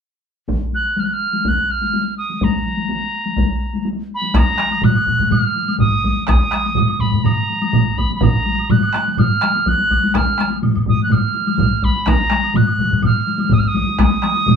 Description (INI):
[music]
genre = japanese traditional, taiko drum ensemble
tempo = 124 BPM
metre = 4/4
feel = straight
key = Bb miyako bushi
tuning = A4 = 438 Hz
[part]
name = taiko ensemble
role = percussion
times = 0.5-14.6 s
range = none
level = -21 LUFS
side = left 4 dB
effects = none
[part]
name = taiko ensemble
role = percussion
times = 0.5-14.1 s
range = none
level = -20 LUFS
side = equal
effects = none
[part]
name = bright reedy wooden piccolo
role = melody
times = 0.7-14.6 s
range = Bb5 to Gb6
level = -19 LUFS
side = right 2 dB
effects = none
[part]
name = taiko ensemble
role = percussion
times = 4.3-14.6 s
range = none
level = -19 LUFS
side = right 2 dB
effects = none
[part]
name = taiko ensemble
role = percussion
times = 4.4-14.6 s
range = none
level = -21 LUFS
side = equal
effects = none
[part]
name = woodblock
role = percussion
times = 4.4-14.6 s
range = none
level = -34 LUFS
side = equal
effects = none
[sound]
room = wet studio reverb, RT60 0.6 s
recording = band playing live in one room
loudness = -15 LUFS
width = side -7 dB against mid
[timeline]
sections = 0.5-4.4 A section; 4.4-14.6 B section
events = none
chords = none